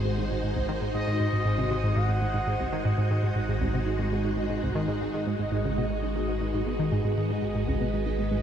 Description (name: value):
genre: ambient, sequencer-driven space music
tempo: 118 BPM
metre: 4/4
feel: straight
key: G# minor from 5.3 s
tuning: A4 = 440 Hz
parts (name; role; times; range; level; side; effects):
- phased string machine; sustained chords; 0.0-8.4 s; Ab3 to C5; -30 LUFS; equal; ensemble chorus, phaser
- tight sequenced synth; riff; 0.0-8.4 s; C2 to Eb3; -28 LUFS; equal; chorus, tape echo
- fat analog bass; bass; 0.0-8.4 s; Ab1; -33 LUFS; equal; none
- expressive synth lead; melody; 0.9-3.0 s; Eb5 to Gb5; -37 LUFS; equal; chorus, tape echo
- wide unison pluck; arpeggios; 5.3-8.3 s; none; barely audible; none; none
- pulsing gated texture; texture; 5.6-8.4 s; D#5; -40 LUFS; right 6 dB; chorus, built-in reverb
room: moderate shimmer reverb, RT60 7.2 s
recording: dark, warm production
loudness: -25 LUFS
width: side -9 dB against mid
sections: 0.0-5.3 A section; 5.3-8.4 B section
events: none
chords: 0.0 Ab7; 5.3 G#m7